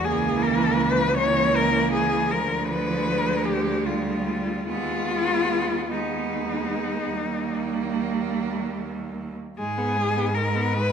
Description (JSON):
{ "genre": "classical, lyrical piece for cello ensemble", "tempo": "48-54 BPM (dotted quarters)", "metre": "12/8", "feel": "rubato", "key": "G# minor", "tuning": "A4 = 440 Hz", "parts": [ { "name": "rich cello", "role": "melody", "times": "0.0-10.9 s", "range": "D#4 to C#5", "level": "-25 LUFS", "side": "left 4 dB", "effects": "none" }, { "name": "rich cello", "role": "second line", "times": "0.0-9.4 s", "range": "Ab3 to B3", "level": "-28 LUFS", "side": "right 10 dB", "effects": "none" }, { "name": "rich cello", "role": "accompaniment", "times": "0.0-10.9 s", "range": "E3 to B3", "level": "-30 LUFS", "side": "equal", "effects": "none" }, { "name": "rich cello", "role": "bass", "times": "0.0-10.9 s", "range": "C#2 to G#2", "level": "-30 LUFS", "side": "right 2 dB", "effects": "none" } ], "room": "wet recital hall reverb, RT60 1.7 s", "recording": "minimal, uncompressed stereo recording", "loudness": "-22 LUFS", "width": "side -7 dB against mid", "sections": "0.0-9.6 A section; 9.6-10.9 B section", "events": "none", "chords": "0.0 A#dim/C#; 2.3 Ddim7; 4.7 G#m/D#; 7.1 D#; 9.6 G#m" }